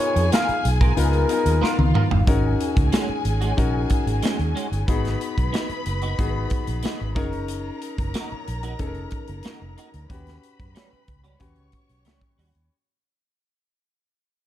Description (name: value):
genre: lush 1970s-style soul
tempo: 92 BPM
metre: 4/4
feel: straight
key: unclear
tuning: A4 = 443 Hz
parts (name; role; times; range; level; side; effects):
- breathy flugelhorn; melody; 0.0-1.9 s; A#4 to E#5; -25 LUFS; equal; none
- warm studio string section; second line; 0.0-12.7 s; E#4 to C#6; -32 LUFS; left 2 dB; none
- warm concert grand piano; accompaniment; 0.0-12.7 s; B3 to B4; -28 LUFS; left 5 dB; none
- vintage muted fingered electric bass; bass; 0.2-12.7 s; E#1 to F#2; -24 LUFS; equal; none
- modern studio drum kit; drums; 0.2-12.7 s; hi-hat, kick drum, snare drum, toms; -24 LUFS; equal; none
- clean electric guitar; riff; 0.3-12.5 s; G3 to A#4; -31 LUFS; right 6 dB; ensemble chorus
room: small room ambience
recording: dark, warm production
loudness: -20 LUFS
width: side -12 dB against mid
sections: 0.0-2.3 A section; 2.3-12.7 B section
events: drum fill 1.6-2.3; fade-out 2.3-12.7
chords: 0.0 C#13; 2.3 G#7sus4; 4.9 G#m7; 7.2 F#6; 10.1 D#7alt